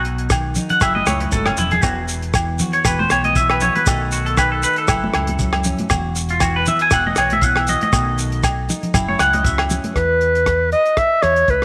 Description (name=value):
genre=highlife guitar band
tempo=118 BPM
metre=4/4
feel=swing 54% on 16ths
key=unclear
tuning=A4 = 440 Hz
part: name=clean electric guitar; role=accompaniment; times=0.0-11.6 s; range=E2 to F#4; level=-29 LUFS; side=equal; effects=none
part: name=fingered electric bass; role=bass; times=0.0-11.6 s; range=E1 to E2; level=-26 LUFS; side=equal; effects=none
part: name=damped 70s drum kit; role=drums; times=0.0-11.6 s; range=hi-hat, kick drum, rim click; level=-25 LUFS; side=equal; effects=none
part: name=agogo bells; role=percussion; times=0.3-9.7 s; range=none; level=-26 LUFS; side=equal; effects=none
part: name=shekere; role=percussion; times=0.3-9.8 s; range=none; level=-26 LUFS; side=equal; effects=none
part: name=congas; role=percussion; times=0.6-10.0 s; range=none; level=-28 LUFS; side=equal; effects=none
part: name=clean electric guitar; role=arpeggios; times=0.7-9.6 s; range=C#4 to G#5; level=-21 LUFS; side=equal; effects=spring reverb, slapback echo
part: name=warm clarinet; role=melody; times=10.0-11.6 s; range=B4 to E5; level=-17 LUFS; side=equal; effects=slapback echo
room=moderate echo chamber reverb, RT60 2.3 s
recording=none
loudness=-17 LUFS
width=mono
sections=0.0-10.0 A section; 10.0-11.6 B section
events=clean electric guitar solo 0.0-10.0; drum fill 1.2-1.8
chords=0.0 B; 0.8 F#5; 1.8 Esus2; 3.9 B7; 4.9 F#m7; 5.9 Esus2; 7.9 B7; 8.9 F#5; 10.0 E5